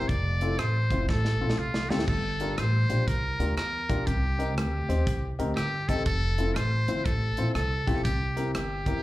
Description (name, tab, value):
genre	uptempo gospel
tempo	121 BPM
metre	4/4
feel	swing 65% on 8ths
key	F major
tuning	A4 = 440 Hz
part	trumpet with metal mute	melody	0.0-9.0 s	F4 to D5	-31 LUFS	equal	slapback echo
part	warm concert grand piano	accompaniment	0.0-9.0 s	G2 to C5	-32 LUFS	left 3 dB	slapback echo
part	upright bass	bass	0.0-9.0 s	F1 to E2	-28 LUFS	equal	none
part	modern studio drum kit	drums	0.0-8.9 s	crash cymbal, hi-hat, kick drum, rim click, snare drum	-32 LUFS	equal	none
room	little or no reverb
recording	live gig heard through the venue's PA, club reverb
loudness	-25 LUFS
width	side -16 dB against mid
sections	0.0-9.0 A section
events	drum fill 1.1-2.1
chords	0.1 Fmaj7; 2.1 Gm7; 4.1 Cm7; 6.1 Fmaj7; 8.0 C7